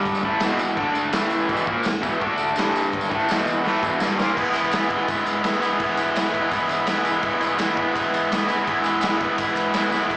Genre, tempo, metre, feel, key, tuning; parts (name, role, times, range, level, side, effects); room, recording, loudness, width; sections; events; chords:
garage rock duo or trio; 167 BPM; 4/4; straight; E mixolydian; A4 = 440 Hz
raw garage guitar; riff; 0.0-10.2 s; E2 to E4; -20 LUFS; equal; overdrive, slapback echo
raw garage drum kit; drums; 0.1-10.2 s; crash cymbal, kick drum, ride cymbal, snare drum; -26 LUFS; equal
tambourine; percussion; 0.1-10.1 s; -38 LUFS; equal
moderate club reverb, RT60 0.6 s; live gig heard through the venue's PA, club reverb, small speaker sound; -19 LUFS; side -20 dB against mid
0.0-4.4 A section; 4.4-10.2 B section
drum fill 3.6-4.4, 9.9
0.2 E5; 0.8 D5; 1.1 A5; 1.5 E5; 2.2 D5; 2.6 G5; 3.1 E5; 4.4 E